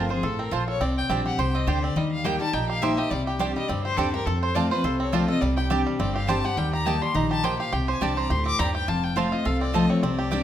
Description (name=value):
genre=bluegrass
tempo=208 BPM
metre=4/4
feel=swing 55% on 8ths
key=C dorian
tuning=A4 = 440 Hz
part: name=bluegrass banjo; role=melody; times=0.0-10.4 s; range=G3 to C5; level=-30 LUFS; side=right 4 dB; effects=none
part: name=rich fiddle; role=second line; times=0.0-10.4 s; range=G4 to D6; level=-30 LUFS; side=left 4 dB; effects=none
part: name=picked steel-string acoustic guitar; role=accompaniment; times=0.0-10.4 s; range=F2 to G4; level=-26 LUFS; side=left 2 dB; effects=none
part: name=mandolin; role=stabs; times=0.0-10.4 s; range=Bb3 to A5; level=-32 LUFS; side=right 8 dB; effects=none
part: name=upright bass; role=bass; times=0.0-10.4 s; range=F1 to F2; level=-29 LUFS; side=equal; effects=none
room=moderate recital hall reverb, RT60 1.5 s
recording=none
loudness=-22 LUFS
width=side -10 dB against mid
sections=0.0-8.9 A section; 8.9-10.4 A section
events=fiddle solo 0.0-10.4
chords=0.0 F; 0.8 Csus2; 2.0 Eb; 3.1 Csus2; 4.3 F; 5.4 Csus2; 6.6 Eb; 7.7 Csus2; 8.9 F